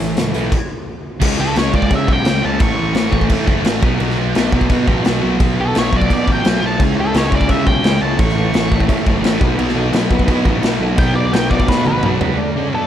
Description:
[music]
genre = garage rock duo or trio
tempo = 172 BPM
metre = 4/4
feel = straight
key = unclear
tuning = A4 = 438 Hz
[part]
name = overdriven combo organ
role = sustained chords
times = 0.0-0.5, 6.8-12.9 s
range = D4 to D#5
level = -25 LUFS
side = left 1 dB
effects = none
[part]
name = thick fuzz guitar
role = riff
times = 0.0-12.9 s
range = A2 to C#4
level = -19 LUFS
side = equal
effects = distortion
[part]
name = fuzz picked electric bass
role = bass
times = 0.0-12.4 s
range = F#1 to C#3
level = -21 LUFS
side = equal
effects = overdrive
[part]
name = raw garage drum kit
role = drums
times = 0.0-12.3 s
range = crash cymbal, hi-hat, kick drum, snare drum, toms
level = -17 LUFS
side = equal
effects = none
[part]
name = octave-fuzz lead guitar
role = melody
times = 1.4-12.9 s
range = A4 to C#6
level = -21 LUFS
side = equal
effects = distortion, analog delay
[sound]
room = little or no reverb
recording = none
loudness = -13 LUFS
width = side -10 dB against mid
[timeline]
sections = 0.0-1.2 A section; 1.2-12.4 B section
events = stop 0.5-1.2; drum fill 11.7-12.4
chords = 0.0 A; 1.2 C#5; 2.6 A; 3.8 B5; 6.8 C#m; 8.2 A; 9.4 B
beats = 0.17 0.52 0.87 | 1.22 1.57 1.92 2.27 | 2.61 2.96 3.31 3.66 | 4.01 4.35 4.70 5.05 | 5.40 5.75 6.10 6.45 | 6.79 7.14 7.49 7.84 | 8.19 8.54 8.89 9.23 | 9.58 9.93 10.28 10.63 | 10.98 11.33 11.68 12.03 | 12.38 12.73

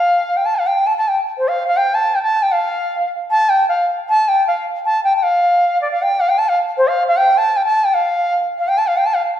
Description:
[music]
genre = indian classical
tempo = 156 BPM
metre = 7/4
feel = straight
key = unclear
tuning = A4 = 440 Hz
[part]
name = bright reedy bansuri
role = solo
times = 0.0-9.2 s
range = C5 to A5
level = -14 LUFS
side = equal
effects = none
[sound]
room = wet recital hall reverb, RT60 1.7 s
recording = heard from further back in the room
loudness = -14 LUFS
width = side -10 dB against mid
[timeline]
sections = 0.0-5.2 A section; 5.2-9.4 B section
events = speeding up 0.0-9.4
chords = none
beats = 0.17 0.56 0.95 1.35 1.74 2.13 | 2.52 2.91 3.30 3.69 4.08 4.46 4.85 | 5.23 5.62 6.00 6.38 6.76 7.14 7.53 | 7.91 8.28 8.66 9.04

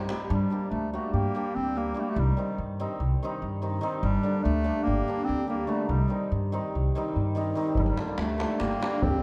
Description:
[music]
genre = balkan folk, Balkan wedding band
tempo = 289 BPM (eighths)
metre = 9/8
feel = straight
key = unclear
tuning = A4 = 441 Hz
[part]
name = hammered dulcimer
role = accompaniment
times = 0.0-9.2 s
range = D3 to G4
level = -33 LUFS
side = equal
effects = none
[part]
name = upright bass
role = bass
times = 0.0-9.2 s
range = G1 to G2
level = -31 LUFS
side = equal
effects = none
[part]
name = davul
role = percussion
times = 0.1-0.2, 7.8-9.1 s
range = none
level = -35 LUFS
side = equal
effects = none
[part]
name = mellow clarinet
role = melody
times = 0.3-9.2 s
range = F#3 to C4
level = -33 LUFS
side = equal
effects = none
[part]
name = mellow accordion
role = second line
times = 0.3-9.2 s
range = D4 to G4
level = -40 LUFS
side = equal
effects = none
[sound]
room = wet recital hall reverb, RT60 1.7 s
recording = none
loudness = -28 LUFS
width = mono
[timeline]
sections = 0.3-9.2 A section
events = none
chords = 0.3 Gm; 2.2 Cm; 4.0 Gm; 5.9 Cm; 7.8 Gm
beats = 0.08 | 0.29 0.49 0.70 0.91 1.12 1.32 1.53 1.74 1.95 | 2.15 2.36 2.57 2.78 2.98 3.19 3.40 3.61 3.81 | 4.02 4.23 4.44 4.64 4.85 5.06 5.27 5.48 5.68 | 5.89 6.10 6.31 6.51 6.72 6.93 7.14 7.34 7.55 | 7.76 7.97 8.17 8.38 8.59 8.79 9.00 9.21

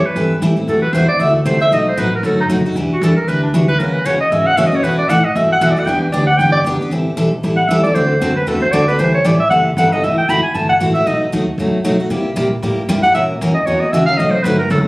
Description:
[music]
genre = acoustic string swing (jazz manouche)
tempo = 231 BPM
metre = 4/4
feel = swing 57% on 8ths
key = unclear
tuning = A4 = 440 Hz
[part]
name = breathy clarinet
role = second line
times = 0.0-14.8 s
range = D4 to B5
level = -15 LUFS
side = equal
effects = none
[part]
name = upright bass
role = bass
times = 0.0-14.9 s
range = E1 to C3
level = -20 LUFS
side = equal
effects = none
[part]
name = picked steel-string acoustic guitar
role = accompaniment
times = 0.2-14.9 s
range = B2 to B4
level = -16 LUFS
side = equal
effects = none
[sound]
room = moderate studio reverb, RT60 0.6 s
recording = recorded on a phone in the room, club reverb, compression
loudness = -12 LUFS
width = side -21 dB against mid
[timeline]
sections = 0.0-6.9 A section; 6.9-14.9 A section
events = clarinet solo 0.0-14.9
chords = 0.0 Am9; 0.7 F#m7b5; 1.7 B7; 2.8 Em7; 3.8 F#7; 4.8 B7sus4; 5.9 Em9; 6.9 Am7; 8.0 D7; 9.0 Am7; 10.0 B7sus4; 11.1 B7; 12.1 C7; 13.2 F#7; 14.2 B7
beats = 0.16 0.42 | 0.68 0.94 1.20 1.46 | 1.72 1.98 2.24 2.50 | 2.76 3.02 3.28 3.54 | 3.80 4.06 4.32 4.58 | 4.84 5.10 5.36 5.62 | 5.88 6.14 6.40 6.66 | 6.92 7.18 7.44 7.70 | 7.96 8.22 8.48 8.74 | 9.00 9.26 9.52 9.77 | 10.03 10.29 10.55 10.81 | 11.07 11.33 11.59 11.85 | 12.11 12.37 12.63 12.89 | 13.15 13.41 13.67 13.93 | 14.19 14.45 14.71

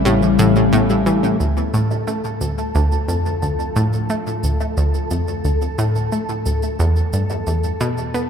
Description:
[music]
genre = ambient, sequencer-driven space music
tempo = 89 BPM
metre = 4/4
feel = straight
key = D dorian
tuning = A4 = 441 Hz
[part]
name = evolving wavetable pad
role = sustained chords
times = 0.0-8.3 s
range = C#3 to B4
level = -23 LUFS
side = left 3 dB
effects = chorus, built-in reverb
[part]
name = soft round pluck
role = arpeggios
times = 0.0-1.3 s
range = E3 to G4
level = -24 LUFS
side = left 2 dB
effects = chorus, auto-pan, tape echo
[part]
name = fat analog bass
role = bass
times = 0.0-1.4 s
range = A1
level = -26 LUFS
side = equal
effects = none
[part]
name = pulsing gated texture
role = texture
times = 0.0-8.3 s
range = E4 to A5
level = -28 LUFS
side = left 1 dB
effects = chorus, built-in reverb
[part]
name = analog pluck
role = riff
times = 0.1-8.3 s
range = D2 to B3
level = -18 LUFS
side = equal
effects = chorus, tape echo
[part]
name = cabasa and woodblock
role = percussion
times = 0.1-8.3 s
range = none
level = -36 LUFS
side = right 5 dB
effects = tape echo
[sound]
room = moderate plate reverb, RT60 3.6 s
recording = dreamy mix soaked in reverb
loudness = -16 LUFS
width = side -7 dB against mid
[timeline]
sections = 0.0-1.4 A section; 1.4-8.3 B section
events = none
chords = 0.0 A7; 1.4 Dm; 6.8 Em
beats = 0.05 0.73 | 1.40 2.08 2.75 3.42 | 4.10 4.77 5.45 6.12 | 6.79 7.47 8.14

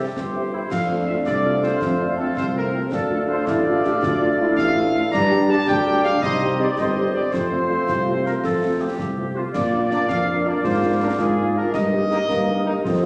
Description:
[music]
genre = military-style march for wind band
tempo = 109 BPM (dotted quarters)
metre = 6/8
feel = straight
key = F major, Bb major from 5.1 s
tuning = A4 = 440 Hz
[part]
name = dark trumpet section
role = melody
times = 0.0-13.1 s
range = Ab4 to Bb5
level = -27 LUFS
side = equal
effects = none
[part]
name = mellow woodwind section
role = second line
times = 0.0-13.1 s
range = E4 to F5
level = -29 LUFS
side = equal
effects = none
[part]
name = dark French horn section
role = accompaniment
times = 0.0-13.1 s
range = G3 to E5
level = -31 LUFS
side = equal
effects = none
[part]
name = clear trombone section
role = sustained chords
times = 0.0-12.7 s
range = G3 to Eb4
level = -32 LUFS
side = equal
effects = none
[part]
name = mellow tuba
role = bass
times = 0.0-13.1 s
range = G1 to Bb2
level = -27 LUFS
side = equal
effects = none
[part]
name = concert snare drum, concert bass drum and clash cymbals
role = drums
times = 0.2-13.1 s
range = none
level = -34 LUFS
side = equal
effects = none
[part]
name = clear euphonium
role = second line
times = 0.7-13.1 s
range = Bb3 to G4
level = -27 LUFS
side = equal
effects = none
[sound]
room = wet recital hall reverb, RT60 1.5 s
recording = nothing above 10.9 kHz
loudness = -21 LUFS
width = mono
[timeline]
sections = 0.7-9.5 A section; 9.5-13.1 B section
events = none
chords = 0.0 C; 0.7 F; 2.9 Dm; 5.1 Gm; 6.2 Cm; 7.3 F; 9.5 Bb; 10.6 Bb7/Ab; 11.7 Eb/G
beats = 0.16 | 0.71 1.27 | 1.82 2.37 | 2.92 3.47 | 4.02 4.57 | 5.12 5.68 | 6.23 6.78 | 7.33 7.88 | 8.43 8.98 | 9.53 10.08 | 10.63 11.19 | 11.74 12.29 | 12.84

